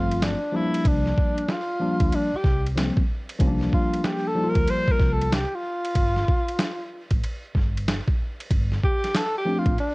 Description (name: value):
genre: hip hop, jazz-hop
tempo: 94 BPM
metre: 4/4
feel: swing 64% on 16ths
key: unclear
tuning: A4 = 440 Hz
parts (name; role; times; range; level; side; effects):
- breathy tenor saxophone; melody; 0.0-9.9 s; D4 to C5; -26 LUFS; equal; cassette tape
- barky tine electric piano; accompaniment; 0.0-5.3, 9.5-9.7 s; F3 to F4; -26 LUFS; left 1 dB; overdrive, cassette tape
- woody fretless electric bass; bass; 0.0-9.8 s; G1 to D2; -26 LUFS; equal; none
- boom bap sampler-style drum kit; drums; 0.1-9.9 s; hi-hat, kick drum, ride cymbal, snare drum; -24 LUFS; equal; cassette tape
room: little or no reverb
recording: home recording on cassette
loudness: -21 LUFS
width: side -24 dB against mid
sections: 0.0-9.9 A section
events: tenor saxophone solo 0.0-9.9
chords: 0.0 G9sus4; 0.8 C9sus4; 6.0 G7sus2